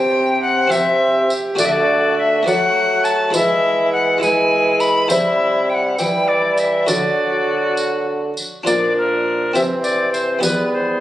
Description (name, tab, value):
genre	classical, renaissance-style consort dance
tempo	68 BPM (dotted quarters)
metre	6/8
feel	straight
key	unclear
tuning	A4 = 440 Hz
part	bright alto recorder	melody	0.0-11.0 s	Bb4 to B5	-18 LUFS	left 2 dB	none
part	warm viola	second line	0.0-11.0 s	B3 to G4	-26 LUFS	right 2 dB	none
part	buff-stop harpsichord	accompaniment	0.0-11.0 s	E2 to D5	-24 LUFS	left 1 dB	none
part	mellow bassoon	accompaniment	0.0-11.0 s	E3 to C4	-21 LUFS	equal	none
part	dark bassoon	bass	0.0-11.0 s	E2 to F#3	-21 LUFS	right 2 dB	none
part	tambourine	percussion	0.7-10.7 s	none	-27 LUFS	right 1 dB	none
room	moderate recital hall reverb, RT60 1.6 s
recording	recorded on a phone in the room, club ambience, compression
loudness	-14 LUFS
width	side -13 dB against mid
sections	0.0-8.7 A section; 8.7-11.0 B section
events	none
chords	0.0 C; 1.6 D; 3.3 E; 5.1 C; 6.9 D; 8.7 Bb; 9.5 C; 10.4 Em